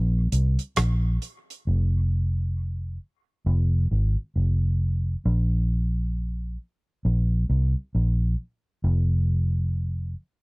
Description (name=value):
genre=dub reggae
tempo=67 BPM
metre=4/4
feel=swing 61% on 16ths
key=unclear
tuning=A4 = 440 Hz
part: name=vintage muted fingered electric bass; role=bass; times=0.0-10.1 s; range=F1 to C2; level=-22 LUFS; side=equal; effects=none
part: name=damped 70s drum kit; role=drums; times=0.3-1.7 s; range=hi-hat, rim click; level=-28 LUFS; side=right 1 dB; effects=none
room=little or no reverb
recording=dry, close 1970s-style studio recording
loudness=-22 LUFS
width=side -31 dB against mid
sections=0.0-1.7 A section; 1.7-10.4 B section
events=break 0.0-1.7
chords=none